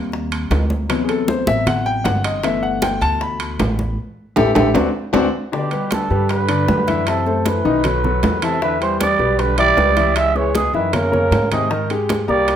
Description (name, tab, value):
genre	Afro-Cuban jazz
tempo	155 BPM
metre	4/4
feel	straight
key	G major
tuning	A4 = 440 Hz
part	warm concert grand piano	accompaniment	0.0-12.6 s	C3 to B5	-20 LUFS	left 3 dB	none
part	upright bass	bass	0.0-12.6 s	G1 to G#2	-22 LUFS	right 1 dB	none
part	bongos	percussion	0.1-12.6 s	none	-27 LUFS	left 5 dB	none
part	congas	percussion	0.1-12.6 s	none	-25 LUFS	right 1 dB	none
part	timbales	percussion	0.3-12.6 s	none	-25 LUFS	right 6 dB	none
part	growling trumpet	melody	5.5-12.6 s	G4 to E5	-19 LUFS	right 4 dB	none
part	clear trombone	second line	5.5-12.6 s	B2 to G#3	-26 LUFS	left 3 dB	none
room	moderate large studio reverb, RT60 0.9 s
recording	none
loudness	-15 LUFS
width	side -9 dB against mid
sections	0.0-5.5 A section; 5.5-12.6 B section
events	grand piano solo 0.0-5.5; drum fill 4.0-5.5; band accent 4.0-5.5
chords	0.0 Abmaj9 (rootless); 0.9 D13; 2.4 G6; 4.0 A5; 4.8 D7; 5.5 G6; 7.1 F#m7b5; 7.8 B5; 8.6 Em7; 10.2 C#m7; 10.9 F#add9; 11.7 Abmaj9